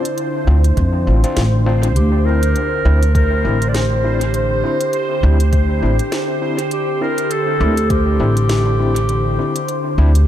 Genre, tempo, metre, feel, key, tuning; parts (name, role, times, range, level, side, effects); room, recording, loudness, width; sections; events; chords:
ambient dub; 101 BPM; 4/4; swing 57% on 16ths; A4 = 440 Hz
dark clarinet; melody; 0.0-10.3 s; G4 to D5; -22 LUFS; left 1 dB; dub echo
warbly tape-like pad; sustained chords; 0.0-10.3 s; D3 to C5; -23 LUFS; right 1 dB; chorus, built-in reverb
bubbling stepped-filter texture; texture; 0.0-10.3 s; C5; -27 LUFS; equal; chorus, built-in reverb
organic electronic drum kit; drums; 0.1-10.3 s; hi-hat, snare drum; -29 LUFS; equal; dub echo
overdriven tine electric piano; stabs; 0.5-10.1 s; C4 to F4; -25 LUFS; left 3 dB; medium tremolo, dub echo
upright bass; bass; 0.5-10.3 s; A1 to F2; -14 LUFS; equal; tube saturation
electronic kick drum; drums; 0.8-8.0 s; -18 LUFS; equal
digital ambience; echo-heavy mix; -14 LUFS; side -11 dB against mid
0.0-10.3 A section
0.0 Dm7; 2.0 Cadd9